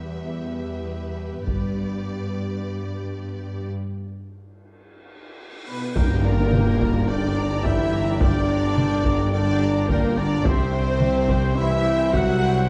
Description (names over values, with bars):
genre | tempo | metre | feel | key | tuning
cinematic, epic orchestral film score | 107 BPM | 4/4 | straight | unclear | A4 = 440 Hz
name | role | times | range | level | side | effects
warm symphonic violin section | melody | 0.0-12.7 s | Bb4 to F#5 | -40 LUFS | equal | none
warm symphonic violin section | second line | 0.0-12.7 s | Bb4 to F#5 | -37 LUFS | equal | none
rich symphonic viola section | accompaniment | 0.0-12.7 s | G4 to Bb5 | -37 LUFS | equal | none
mellow French horn section | sustained chords | 0.0-12.7 s | G3 to F#4 | -29 LUFS | equal | none
warm studio cello section | bass | 0.0-12.7 s | C2 to G2 | -30 LUFS | equal | none
warm symphonic double bass section | bass | 1.5-2.0, 6.0-12.7 s | G1 to C2 | -30 LUFS | equal | none
taiko ensemble | drums | 1.5-2.6, 6.0-12.7 s | none | -27 LUFS | equal | none
cymbal swell and tam-tam | percussion | 3.7-8.2 s | none | -36 LUFS | equal | none
cymbal swell and sub drop | sound effects | 5.2-8.2 s | none | -33 LUFS | equal | none
clear trombone section | sustained chords | 5.7-12.7 s | Bb2 to F#3 | -34 LUFS | equal | none
warm trumpet section | stabs | 5.7-12.7 s | Bb4 to F#5 | -32 LUFS | equal | none
warm symphonic string section | sustained chords | 6.0-12.7 s | C4 to G5 | -37 LUFS | equal | none
mellow tuba | bass | 6.0-12.7 s | G1 to C2 | -31 LUFS | equal | none
room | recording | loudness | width
moderate scoring stage reverb, RT60 1.5 s | dark, warm production | -22 LUFS | mono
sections
0.0-6.0 A section; 6.0-12.7 B section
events
break 3.7-6.0; cymbal swell 5.2-6.0; band accent 6.0-6.5; impact 6.0-8.2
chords
0.0 Em; 1.5 G; 3.7 N.C.; 6.0 Gm; 10.5 C